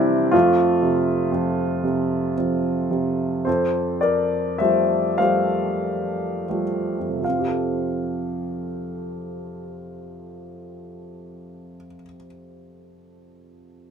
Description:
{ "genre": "classical, lyrical solo piano", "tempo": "25-43 BPM (dotted quarters)", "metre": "6/8", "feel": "rubato", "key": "F major", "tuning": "A4 = 441 Hz", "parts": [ { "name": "warm upright piano", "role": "solo", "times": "0.0-13.9 s", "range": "F2 to F5", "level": "-20 LUFS", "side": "equal", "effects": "none" } ], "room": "moderate small room reverb, RT60 0.5 s", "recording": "minimal, uncompressed stereo recording", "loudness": "-20 LUFS", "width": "side -7 dB against mid", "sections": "0.0-3.5 A section; 3.5-7.2 B section; 7.2-11.8 C section", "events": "slowing down 0.3-7.2", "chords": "0.3 F; 3.5 Fadd9" }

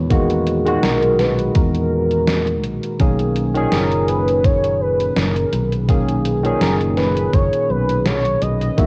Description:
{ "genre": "vaporwave", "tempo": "83 BPM", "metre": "4/4", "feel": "swing 54% on 16ths", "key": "B major", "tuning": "A4 = 440 Hz", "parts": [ { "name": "barky tine electric piano", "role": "accompaniment", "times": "0.0-8.9 s", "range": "A#2 to G#4", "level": "-23 LUFS", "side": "equal", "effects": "analog chorus, cassette tape" }, { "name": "fretless electric bass", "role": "bass", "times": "0.0-8.9 s", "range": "F#1 to E2", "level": "-24 LUFS", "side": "equal", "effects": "none" }, { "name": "electronic kick drum", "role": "drums", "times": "0.1-8.9 s", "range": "none", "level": "-19 LUFS", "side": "equal", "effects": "vintage 12-bit sampler grit, studio reverb, cassette tape" }, { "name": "gated 80s digital drum machine", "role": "drums", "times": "0.1-8.9 s", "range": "hi-hat, snare drum", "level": "-25 LUFS", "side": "equal", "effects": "gated reverb, gated reverb snare, vintage 12-bit sampler grit, studio reverb, cassette tape" }, { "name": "warm velvety synth lead", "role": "melody", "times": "0.8-8.9 s", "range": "A#4 to E5", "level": "-24 LUFS", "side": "equal", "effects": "chorus, cassette tape, tape echo" } ], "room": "light reverb", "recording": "home recording on cassette", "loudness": "-18 LUFS", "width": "mono", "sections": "0.0-8.9 A section", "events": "none", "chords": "0.0 Emaj9#11; 3.0 Bmaj13" }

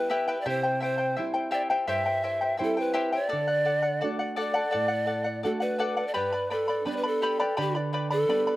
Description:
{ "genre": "andean folk, Andean ensemble", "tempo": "85 BPM", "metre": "4/4", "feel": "straight", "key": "unclear", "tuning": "A4 = 440 Hz", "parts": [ { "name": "breathy reedy pan flute", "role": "melody", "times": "0.0-8.6 s", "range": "G4 to E5", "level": "-28 LUFS", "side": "equal", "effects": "slapback echo" }, { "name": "charango", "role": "accompaniment", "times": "0.0-8.6 s", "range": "E4 to B5", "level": "-28 LUFS", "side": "left 2 dB", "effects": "slapback echo" }, { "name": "nylon-string guitar", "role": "accompaniment", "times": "0.0-8.6 s", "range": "G2 to F#4", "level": "-33 LUFS", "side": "right 3 dB", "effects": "none" } ], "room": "little or no reverb", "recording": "recorded outdoors, with no room sound", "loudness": "-25 LUFS", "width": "side -16 dB against mid", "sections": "0.0-8.6 A section", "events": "none", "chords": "0.5 C; 3.3 D; 6.2 G" }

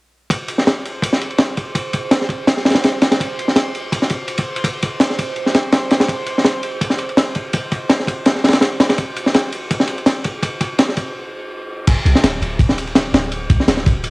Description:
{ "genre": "drum and bass, jungle", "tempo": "166 BPM", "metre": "4/4", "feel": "swing 54% on 16ths", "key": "unclear", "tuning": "A4 = 441 Hz", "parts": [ { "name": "crunchy breakbeat drum kit", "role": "drums", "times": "0.3-14.1 s", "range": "crash cymbal, kick drum, ride cymbal, snare drum", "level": "-15 LUFS", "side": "equal", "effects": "high-pass filter on kick, cassette tape, high-pass filter on cymbals, high-pass filter on snare, high-pass filter on room" }, { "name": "drifting glass-harmonics texture", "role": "texture", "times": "0.8-11.2 s", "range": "C5 to C6", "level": "-29 LUFS", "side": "right 3 dB", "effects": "chorus, built-in reverb, cassette tape" }, { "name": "warm 808-style bass", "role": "bass", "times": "11.9-14.1 s", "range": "D1 to C2", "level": "-20 LUFS", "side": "equal", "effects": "none" }, { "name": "dusty soul sampler-style drum kit", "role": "drums", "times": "11.9-14.1 s", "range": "hi-hat, snare drum", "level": "-33 LUFS", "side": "equal", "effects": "none" } ], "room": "light reverb, small room ambience", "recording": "home recording on cassette", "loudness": "-15 LUFS", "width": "side -24 dB against mid", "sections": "0.3-11.9 A section; 11.9-14.1 B section", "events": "stop 11.2-11.9; drop 11.9-14.1", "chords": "none" }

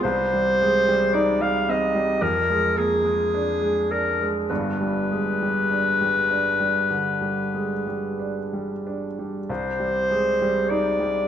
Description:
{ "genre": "classical, romantic duo for clarinet and grand piano", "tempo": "45-56 BPM", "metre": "4/4", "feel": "rubato", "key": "C minor", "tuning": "A4 = 439 Hz", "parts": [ { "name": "clear clarinet", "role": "melody", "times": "0.0-11.3 s", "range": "Ab4 to F5", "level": "-22 LUFS", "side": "left 2 dB", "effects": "none" }, { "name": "clear grand piano", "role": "accompaniment", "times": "0.0-11.3 s", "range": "G1 to Eb4", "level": "-24 LUFS", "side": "right 2 dB", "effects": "none" } ], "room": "wet recital hall reverb, RT60 1.7 s", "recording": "minimal, uncompressed stereo recording", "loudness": "-20 LUFS", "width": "side -9 dB against mid", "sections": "0.0-11.3 A section", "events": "none", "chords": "0.0 Cm; 2.2 Ddim/F; 4.5 G; 9.5 Cm" }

